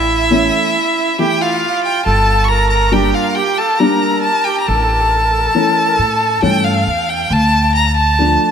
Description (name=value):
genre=klezmer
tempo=69 BPM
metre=3/4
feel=straight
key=A phrygian dominant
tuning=A4 = 443 Hz
part: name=clear violin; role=melody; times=0.0-8.5 s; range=E5 to C#6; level=-15 LUFS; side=left 1 dB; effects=analog delay
part: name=accordion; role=second line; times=0.0-6.4 s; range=E4 to Bb4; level=-19 LUFS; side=right 5 dB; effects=analog delay
part: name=upright bass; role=bass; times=0.0-8.4 s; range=G1 to A2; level=-17 LUFS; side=equal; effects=none
part: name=dark upright piano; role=accompaniment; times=0.3-8.5 s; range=E3 to E4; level=-18 LUFS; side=left 2 dB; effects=lush chorus
room=moderate plate reverb, RT60 3.0 s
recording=dreamy mix soaked in reverb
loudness=-12 LUFS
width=side -7 dB against mid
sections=0.0-7.3 A section; 7.3-8.5 A section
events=none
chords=0.0 A; 2.1 Gm; 4.7 A; 7.3 Dm